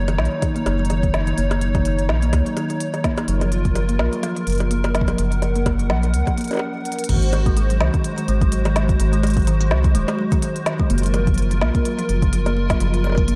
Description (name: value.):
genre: IDM.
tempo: 126 BPM.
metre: 4/4.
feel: swing 56% on 16ths.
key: unclear.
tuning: A4 = 444 Hz.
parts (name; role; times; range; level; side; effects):
hollow soft pad; sustained chords; 0.0-13.4 s; Ab3 to Gb5; -29 LUFS; equal; ensemble chorus, vintage 12-bit sampler grit.
round analog bass; bass; 0.0-13.4 s; Eb1 to Db2; -22 LUFS; equal; none.
kalimba; arpeggios; 0.1-13.3 s; Eb3 to Db4; -27 LUFS; equal; vintage 12-bit sampler grit, digital delay.
organic electronic drum kit; drums; 0.1-13.4 s; bongos, crash cymbal, hi-hat, snare drum; -30 LUFS; equal; digital delay.
electronic kick drum; drums; 0.4-13.3 s; none; -23 LUFS; equal; none.
room: little or no reverb.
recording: dark, warm production.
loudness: -20 LUFS.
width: mono.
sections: 0.0-7.1 A section; 7.1-13.4 B section.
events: break 6.6-7.1; drum fill 6.9.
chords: 0.0 Ebm7/Gb; 3.3 Gbmaj7; 7.1 Ab7; 10.9 Gbmaj7.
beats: 0.42 0.90 | 1.38 1.85 2.33 2.80 | 3.28 3.76 4.23 4.71 | 5.18 5.66 6.14 6.61 | 7.09 7.57 8.04 8.52 | 8.99 9.47 9.95 10.42 | 10.90 11.38 11.85 12.33 | 12.80 13.28.